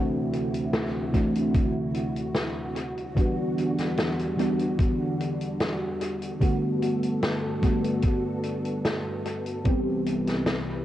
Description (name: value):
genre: vaporwave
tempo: 74 BPM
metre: 4/4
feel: straight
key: G major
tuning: A4 = 440 Hz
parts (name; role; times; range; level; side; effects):
- mellow FM electric piano; accompaniment; 0.0-10.8 s; D3 to G4; -27 LUFS; equal; phaser, ensemble chorus, tape echo
- soft string machine; sustained chords; 0.0-10.8 s; C2 to B4; -32 LUFS; equal; ensemble chorus
- vintage drum kit; drums; 0.3-10.6 s; hi-hat, snare drum; -32 LUFS; left 1 dB; tape echo
- electronic kick drum; drums; 1.1-9.8 s; none; -24 LUFS; equal; none
room: moderate spring reverb, RT60 2.6 s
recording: echo-heavy mix, cassette tape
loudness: -24 LUFS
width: side -13 dB against mid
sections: 0.0-10.8 A section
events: none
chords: 0.0 D9; 2.8 Em9; 6.4 Gmaj9; 9.7 Cmaj7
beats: 0.74 1.55 2.36 | 3.17 3.98 4.79 5.60 | 6.41 7.22 8.04 8.85 | 9.66 10.47